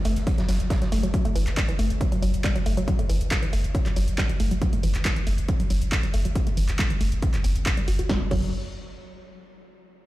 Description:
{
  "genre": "driving peak-time techno",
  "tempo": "138 BPM",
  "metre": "4/4",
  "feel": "straight",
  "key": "F# minor",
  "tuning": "A4 = 442 Hz",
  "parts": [
    { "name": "raw garage drum kit", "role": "drums", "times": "0.0-1.0 s", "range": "hi-hat, snare drum", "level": "-41 LUFS", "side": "right 1 dB", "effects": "high-pass filter on hats, high-pass filter on snare, high-pass filter on room" },
    { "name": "woody wave-folded pluck", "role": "riff", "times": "0.1-8.5 s", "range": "E3 to F#4", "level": "-30 LUFS", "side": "equal", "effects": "chorus, overdrive, sidechain pumping, dub echo" },
    { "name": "warm sub bass", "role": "bass", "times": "0.1-8.5 s", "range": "F#1", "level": "-25 LUFS", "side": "equal", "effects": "overdrive, sidechain pumping, low-pass filter" },
    { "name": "punchy analog drum machine", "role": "drums", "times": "0.1-8.4 s", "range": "crash cymbal, handclaps, hi-hat, snare drum", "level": "-32 LUFS", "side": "right 1 dB", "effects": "overdrive" },
    { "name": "electronic kick drum", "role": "drums", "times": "0.3-8.4 s", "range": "none", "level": "-25 LUFS", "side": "equal", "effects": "none" }
  ],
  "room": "little or no reverb",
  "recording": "played on a big sound system in a bare room, large studio reverb",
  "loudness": "-22 LUFS",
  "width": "side -16 dB against mid",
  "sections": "0.0-8.1 A section; 8.1-9.8 B section",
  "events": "filter sweep on synth arpeggio sound 0.0-8.1",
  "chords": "none"
}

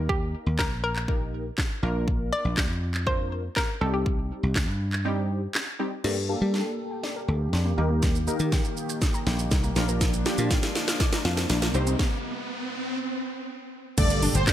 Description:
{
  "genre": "dance-pop",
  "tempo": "121 BPM",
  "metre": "4/4",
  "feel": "straight",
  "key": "G minor",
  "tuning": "A4 = 442 Hz",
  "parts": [
    { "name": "hollow square pluck", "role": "melody", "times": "0.0-4.9 s", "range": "G4 to D5", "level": "-30 LUFS", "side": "left 1 dB", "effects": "chorus, ping-pong delay" },
    { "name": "funky polysynth comp", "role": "accompaniment", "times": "0.0-14.5 s", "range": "G3 to C5", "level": "-31 LUFS", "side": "equal", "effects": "chorus, sidechain pumping, low-pass filter" },
    { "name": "dry thumbed slap bass", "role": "bass", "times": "0.0-14.5 s", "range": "G1 to G3", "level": "-26 LUFS", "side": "equal", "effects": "sidechain pumping" },
    { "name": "house drum kit", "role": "drums", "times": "0.1-14.5 s", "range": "crash cymbal, handclaps, hi-hat, kick drum, shaker, snare drum", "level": "-26 LUFS", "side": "equal", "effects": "none" },
    { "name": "chorused pulse-width pad", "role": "sustained chords", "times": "6.0-14.5 s", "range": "Bb2 to A4", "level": "-34 LUFS", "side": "left 1 dB", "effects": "sidechain pumping, low-pass filter" },
    { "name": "wide unison pluck", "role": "arpeggios", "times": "6.0-14.5 s", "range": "F3 to G6", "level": "-35 LUFS", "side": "left 4 dB", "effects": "sidechain pumping, low-pass filter, ping-pong delay" },
    { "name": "riser and impact", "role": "sound effects", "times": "8.4-14.5 s", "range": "none", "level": "-34 LUFS", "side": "equal", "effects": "none" },
    { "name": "soft supersaw", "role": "melody", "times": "14.0-14.5 s", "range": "C5 to D5", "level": "-27 LUFS", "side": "right 1 dB", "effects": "sidechain pumping" }
  ],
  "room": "light reverb",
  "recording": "none",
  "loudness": "-24 LUFS",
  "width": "side -11 dB against mid",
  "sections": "0.0-6.0 A section; 6.0-14.0 B section",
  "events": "kick muted 5.1-6.0; build-up 6.0-14.0; drum fill 6.0-12.0; filter sweep 6.0-14.0; riser 8.4-14.0; stop 12.0-14.0; impact 14.0-14.5",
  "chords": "0.0 Eb; 1.8 Bb; 3.8 Cm; 6.0 Gmadd9; 7.8 Eb; 9.8 Bb; 11.7 Cm; 14.0 Gmadd9"
}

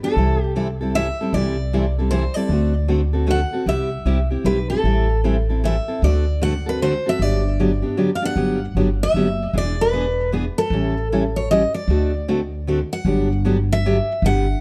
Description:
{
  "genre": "acoustic string swing (jazz manouche)",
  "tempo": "154 BPM",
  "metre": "3/4",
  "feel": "swing 63% on 8ths",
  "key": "G major",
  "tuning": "A4 = 441 Hz",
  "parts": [
    { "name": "picked steel-string acoustic guitar", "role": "melody", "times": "0.0-14.6 s", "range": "A4 to F#5", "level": "-26 LUFS", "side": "equal", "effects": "none" },
    { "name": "picked steel-string acoustic guitar", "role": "accompaniment", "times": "0.0-14.5 s", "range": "C3 to A4", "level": "-24 LUFS", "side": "equal", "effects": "none" },
    { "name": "upright bass", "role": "bass", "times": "0.2-14.5 s", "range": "E1 to D2", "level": "-23 LUFS", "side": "equal", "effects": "none" }
  ],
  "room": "light reverb",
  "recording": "dark, warm production",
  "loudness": "-20 LUFS",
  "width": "mono",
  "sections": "0.0-8.4 A section; 8.4-14.6 B section",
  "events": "none",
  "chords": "0.2 C6; 2.5 D7; 3.7 C; 4.8 Am7; 6.0 D7; 7.2 Gmaj7; 9.5 E7; 10.7 A7; 11.9 D7; 13.1 Gmaj7"
}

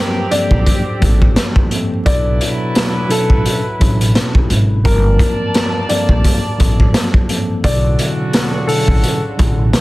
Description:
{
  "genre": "hip hop, boom-bap hip-hop",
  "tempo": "86 BPM",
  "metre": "4/4",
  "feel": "swing 60% on 16ths",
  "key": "B minor",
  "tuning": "A4 = 439 Hz",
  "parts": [
    { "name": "dark upright piano", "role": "melody", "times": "0.0-9.2 s", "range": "A4 to D5", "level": "-21 LUFS", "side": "left 1 dB", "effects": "high-pass filter, low-pass filter, tape echo" },
    { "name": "mellow tine electric piano", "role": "accompaniment", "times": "0.0-9.8 s", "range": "G2 to Bb4", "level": "-20 LUFS", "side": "equal", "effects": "medium stereo tremolo, high-pass filter, low-pass filter" },
    { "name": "warm horn section", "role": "stabs", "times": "0.0-9.8 s", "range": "C#3 to A5", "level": "-25 LUFS", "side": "right 1 dB", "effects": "high-pass filter, low-pass filter, tape echo" },
    { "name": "raw garage drum kit", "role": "drums", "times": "0.3-9.8 s", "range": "hi-hat, kick drum, snare drum", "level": "-15 LUFS", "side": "equal", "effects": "none" },
    { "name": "upright bass", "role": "bass", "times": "0.5-9.7 s", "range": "G1 to B1", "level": "-16 LUFS", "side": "equal", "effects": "none" }
  ],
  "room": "light reverb",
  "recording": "dense, heavily limited modern master, vinyl crackle",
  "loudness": "-12 LUFS",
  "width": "side -19 dB against mid",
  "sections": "0.0-9.8 A section",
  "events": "none",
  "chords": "0.0 Gm11; 2.1 Bm11; 4.8 Gm11; 7.6 Bm11"
}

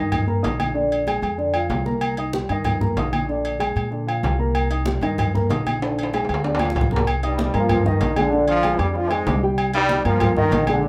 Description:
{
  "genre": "latin, salsa",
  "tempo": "190 BPM",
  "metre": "4/4",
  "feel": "straight",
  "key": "C minor",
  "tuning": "A4 = 440 Hz",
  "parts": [
    { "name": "dark upright piano", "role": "accompaniment", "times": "0.0-10.9 s", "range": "D3 to Eb6", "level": "-26 LUFS", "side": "equal", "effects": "none" },
    { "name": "upright bass", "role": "bass", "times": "0.0-10.9 s", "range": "Bb1 to Bb2", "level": "-27 LUFS", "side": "equal", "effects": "none" },
    { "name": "agogo bells and timbales", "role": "percussion", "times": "0.1-10.8 s", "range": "none", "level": "-29 LUFS", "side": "equal", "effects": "none" },
    { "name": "congas", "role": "percussion", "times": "0.1-10.9 s", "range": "none", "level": "-29 LUFS", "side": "equal", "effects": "none" },
    { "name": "bright trombone section", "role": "melody", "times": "7.3-10.9 s", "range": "G2 to F4", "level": "-24 LUFS", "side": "equal", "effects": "none" }
  ],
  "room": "moderate studio ambience, RT60 0.4 s",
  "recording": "none",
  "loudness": "-21 LUFS",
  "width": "mono",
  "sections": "0.0-7.1 A section; 7.1-10.9 B section",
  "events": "drum fill 5.8-7.1",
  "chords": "0.0 Cm7 (rootless); 0.8 Bb7; 2.0 Cm7; 3.3 Bb7; 4.5 Cm7; 5.8 Bb7; 7.1 Cm7; 8.3 Bb7; 9.6 Cm7"
}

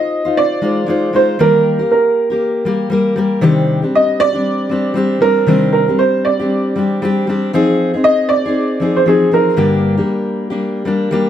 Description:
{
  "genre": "acoustic pop",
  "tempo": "117 BPM",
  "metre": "4/4",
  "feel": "swing 60% on 16ths",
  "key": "C minor",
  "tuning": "A4 = 440 Hz",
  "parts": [
    { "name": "dark upright piano", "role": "melody", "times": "0.0-11.1 s", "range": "Ab4 to Eb5", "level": "-15 LUFS", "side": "right 3 dB", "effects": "none" },
    { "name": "fingerpicked steel-string acoustic guitar", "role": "accompaniment", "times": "0.0-11.3 s", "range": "G2 to C5", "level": "-14 LUFS", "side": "left 2 dB", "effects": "none" }
  ],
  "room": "moderate studio reverb, RT60 0.8 s",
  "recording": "none",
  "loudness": "-12 LUFS",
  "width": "side -10 dB against mid",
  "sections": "0.0-11.3 A section",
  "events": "none",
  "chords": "0.0 Ab6; 1.4 Eb; 3.4 Cmadd9; 7.5 Fm7; 9.6 Gm"
}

